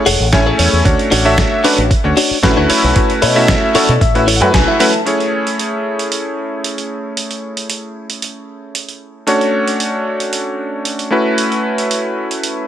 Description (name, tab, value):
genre	nu-disco, nu disco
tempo	114 BPM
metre	4/4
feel	straight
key	A major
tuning	A4 = 442 Hz
part	clear electric grand piano	accompaniment	0.0-12.7 s	A3 to G#5	-16 LUFS	equal	sidechain pumping, tape echo
part	direct-recorded clean electric guitar	riff	0.1-5.1 s	D4 to A5	-18 LUFS	left 4 dB	wide subtle chorus, tape echo
part	fingered electric bass with an envelope filter	bass	0.1-4.6 s	E1 to B2	-16 LUFS	equal	none
part	dusty soul sampler-style drum kit	drums	0.1-12.5 s	hi-hat, snare drum	-18 LUFS	right 3 dB	small room ambience
part	electronic kick drum	drums	0.3-4.6 s	none	-16 LUFS	equal	small room ambience
room	light reverb, digital ambience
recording	none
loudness	-12 LUFS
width	side -10 dB against mid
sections	0.0-5.1 A section; 5.1-12.7 B section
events	clean electric guitar fill 0.0-0.9, 3.5-5.1; band accent 4.5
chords	0.0 Amaj7; 0.9 Dmaj7; 2.7 B9sus4; 5.1 Amaj7; 9.3 Dmaj7; 11.1 B9sus4